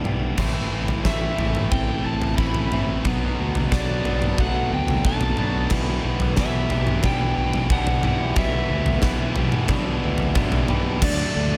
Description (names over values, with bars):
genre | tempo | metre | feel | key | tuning
post-rock | 90 BPM | 4/4 | straight | E minor | A4 = 440 Hz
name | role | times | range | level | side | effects
electric guitar through a small old amp | arpeggios | 0.0-11.6 s | A2 to G4 | -34 LUFS | equal | slapback echo
thick fuzz guitar | riff | 0.0-11.6 s | A2 to G4 | -30 LUFS | equal | distortion
modern bright fingered electric bass | bass | 0.0-11.6 s | A1 to D2 | -29 LUFS | equal | none
huge arena drum kit | drums | 0.1-11.2 s | crash cymbal, kick drum, snare drum, toms | -26 LUFS | equal | none
distorted electric guitar | riff | 0.4-11.0 s | E2 to B3 | -33 LUFS | equal | overdrive
overdriven slide guitar | melody | 1.1-11.6 s | D5 to B5 | -31 LUFS | equal | slapback echo
room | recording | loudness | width
light reverb, small room reverb | none | -22 LUFS | mono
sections
0.0-11.0 A section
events
build-up 0.0-11.0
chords
0.4 Am7; 3.1 Bm7; 5.7 Em7/B; 11.0 D